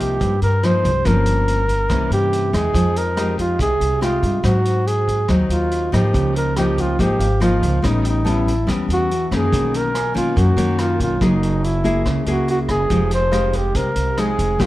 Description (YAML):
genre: bossa nova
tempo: 142 BPM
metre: 4/4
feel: straight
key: unclear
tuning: A4 = 440 Hz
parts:
  - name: mellow flugelhorn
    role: melody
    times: 0.0-14.7 s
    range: Eb4 to C5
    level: -21 LUFS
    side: right 1 dB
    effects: plate reverb
  - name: nylon-string guitar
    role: accompaniment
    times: 0.0-14.7 s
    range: F#2 to Ab4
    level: -21 LUFS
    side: left 2 dB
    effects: none
  - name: upright bass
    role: bass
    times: 0.0-14.7 s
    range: F1 to Ab2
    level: -21 LUFS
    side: right 1 dB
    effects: none
  - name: vintage drum kit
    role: drums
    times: 0.0-14.7 s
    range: hi-hat, kick drum, rim click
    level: -27 LUFS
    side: equal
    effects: none
  - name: clear grand piano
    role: accompaniment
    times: 6.6-14.7 s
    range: F5 to A5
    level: -34 LUFS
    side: right 3 dB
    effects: none
room: light reverb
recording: dark, warm production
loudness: -16 LUFS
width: side -16 dB against mid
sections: 0.0-14.7 A section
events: none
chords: 0.0 Cm7; 1.1 Gm7b5; 1.9 C7b9; 2.7 Fm9; 4.4 Ab7; 6.1 Db69; 7.8 A9; 9.5 Bmaj9; 11.2 Gb9; 12.9 Fm9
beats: 0.20 0.63 | 1.05 1.47 1.90 2.32 | 2.74 3.17 3.59 4.01 | 4.44 4.86 5.28 5.71 | 6.13 6.55 6.98 7.40 | 7.82 8.25 8.67 9.09 | 9.52 9.94 10.36 10.79 | 11.21 11.63 12.05 12.48 | 12.90 13.32 13.75 14.17 | 14.59